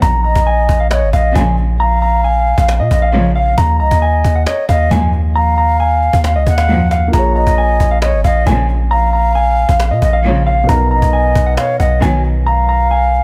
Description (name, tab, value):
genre	hip hop, trap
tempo	135 BPM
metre	4/4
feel	half-time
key	Bb phrygian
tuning	A4 = 440 Hz
part	mellow electric guitar	melody	0.0-13.2 s	Eb5 to Bb5	-19 LUFS	equal	low-pass filter
part	dark concert grand piano	accompaniment	0.0, 7.1-13.2 s	B2 to Db5	-25 LUFS	equal	low-pass filter
part	long sustained 808-style bass	bass	0.0-13.2 s	Ab1 to Bb2	-16 LUFS	equal	none
part	cajon	drums	0.0-13.2 s	none	-24 LUFS	equal	none
part	mellow concert flute	second line	0.2-13.2 s	Db5 to Gb5	-21 LUFS	equal	tape echo
part	dark symphonic string section	stabs	1.4-12.4 s	Gb2 to F#3	-22 LUFS	equal	none
room	light reverb, studio reverb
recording	none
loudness	-13 LUFS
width	mono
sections	0.0-13.2 A section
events	none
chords	0.0 Bbm7; 3.6 Ebmadd9; 7.1 Bbm7; 10.7 Bmaj7